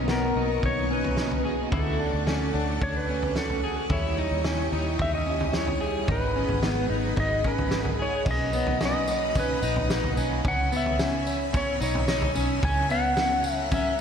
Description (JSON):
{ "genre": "dream pop", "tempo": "110 BPM", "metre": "4/4", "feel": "straight", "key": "B major", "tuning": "A4 = 442 Hz", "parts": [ { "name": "crunchy overdriven guitar", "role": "accompaniment", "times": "0.0-14.0 s", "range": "G#2 to A#4", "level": "-34 LUFS", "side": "right 1 dB", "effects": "tremolo, lush chorus, slapback echo" }, { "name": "string machine, violins", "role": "sustained chords", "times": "0.0-14.0 s", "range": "B3 to E6", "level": "-33 LUFS", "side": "equal", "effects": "ensemble chorus" }, { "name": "electric guitar at the edge of break-up", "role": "arpeggios", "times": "0.0-14.0 s", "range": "B3 to G#4", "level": "-30 LUFS", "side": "left 2 dB", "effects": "wide subtle chorus, ping-pong delay, slapback echo" }, { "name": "vintage muted fingered electric bass", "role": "bass", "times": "0.0-14.0 s", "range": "G#1 to D#2", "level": "-30 LUFS", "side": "equal", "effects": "none" }, { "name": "small celesta", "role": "texture", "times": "0.0-12.8 s", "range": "C#5 to D#5", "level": "-41 LUFS", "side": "equal", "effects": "none" }, { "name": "clean lap steel guitar", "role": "melody", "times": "0.1-14.0 s", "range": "A4 to G#5", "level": "-29 LUFS", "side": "equal", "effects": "ping-pong delay, slapback echo" }, { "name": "loose indie drum kit", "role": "drums", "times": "0.1-13.8 s", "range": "crash cymbal, kick drum, snare drum, tambourine, toms", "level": "-30 LUFS", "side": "equal", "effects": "none" } ], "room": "wet concert hall reverb, RT60 2.2 s", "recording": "big arena sound", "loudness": "-23 LUFS", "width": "side -7 dB against mid", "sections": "0.0-8.3 A section; 8.3-14.0 B section", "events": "none", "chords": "0.0 Bmaj9; 1.7 Dmaj7; 3.9 D#7b9; 6.1 G#m7; 8.3 Bmaj7; 10.4 C#m7; 12.6 F#7/C#" }